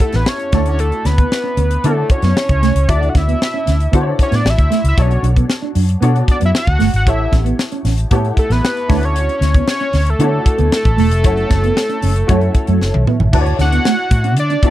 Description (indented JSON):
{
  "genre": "polished 1980s jazz-funk pop",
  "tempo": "115 BPM",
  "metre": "4/4",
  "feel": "straight",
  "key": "unclear",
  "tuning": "A4 = 439 Hz",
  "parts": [
    { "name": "fat analog lead", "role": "melody", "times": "0.0-14.7 s", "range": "A4 to F#5", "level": "-19 LUFS", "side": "equal", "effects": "chorus" },
    { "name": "clear baby grand piano", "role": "accompaniment", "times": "0.0-14.7 s", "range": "B3 to E5", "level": "-23 LUFS", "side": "left 2 dB", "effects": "ensemble chorus" },
    { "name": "crisp fusion drum kit", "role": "drums", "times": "0.0-14.7 s", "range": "crash cymbal, hi-hat, kick drum, snare drum, toms", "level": "-16 LUFS", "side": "equal", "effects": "none" },
    { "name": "mellow electric guitar", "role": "riff", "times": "0.1-14.7 s", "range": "A3 to D4", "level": "-21 LUFS", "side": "right 5 dB", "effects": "wide subtle chorus" },
    { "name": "vintage muted fingered electric bass", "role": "bass", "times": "0.1-14.6 s", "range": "E1 to D3", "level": "-15 LUFS", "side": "equal", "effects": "none" }
  ],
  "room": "little or no reverb",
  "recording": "dry, close 1970s-style studio recording",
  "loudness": "-12 LUFS",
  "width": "side -14 dB against mid",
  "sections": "0.0-13.3 A section; 13.3-14.7 B section",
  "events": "drum fill 12.8-13.3",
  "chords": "0.0 A7; 0.5 Dmaj9; 5.0 Bm9; 7.1 A7; 8.9 Dmaj9; 11.2 F#m7; 13.3 Dmaj7"
}